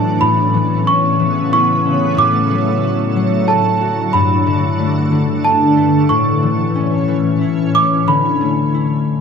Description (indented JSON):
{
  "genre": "children's music, lullaby",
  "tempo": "91 BPM",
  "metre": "3/4",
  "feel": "straight",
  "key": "D major",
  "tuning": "A4 = 442 Hz",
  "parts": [
    { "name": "celesta", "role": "melody", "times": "0.0-9.2 s", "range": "A5 to D6", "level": "-17 LUFS", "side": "right 3 dB", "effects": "none" },
    { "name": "concert harp", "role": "accompaniment", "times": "0.0-9.2 s", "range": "G2 to A4", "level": "-16 LUFS", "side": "left 4 dB", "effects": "none" },
    { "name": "shimmering ambient pad", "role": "sustained chords", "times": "0.0-8.1 s", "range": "G2 to C#4", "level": "-20 LUFS", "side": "right 2 dB", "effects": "chorus, built-in reverb" }
  ],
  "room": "moderate recital hall reverb, RT60 1.3 s",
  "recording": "close, detailed microphones",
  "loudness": "-12 LUFS",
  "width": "side -6 dB against mid",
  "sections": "0.0-8.1 A section; 8.1-9.2 B section",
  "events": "none",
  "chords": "0.2 Aadd9; 2.2 D/A; 4.1 Gsus2; 6.1 A; 8.1 Dsus2",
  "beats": "| 0.21 0.87 1.53 | 2.19 2.83 3.48 | 4.13 4.78 5.44 | 6.09 6.75 7.41 | 8.08 8.74"
}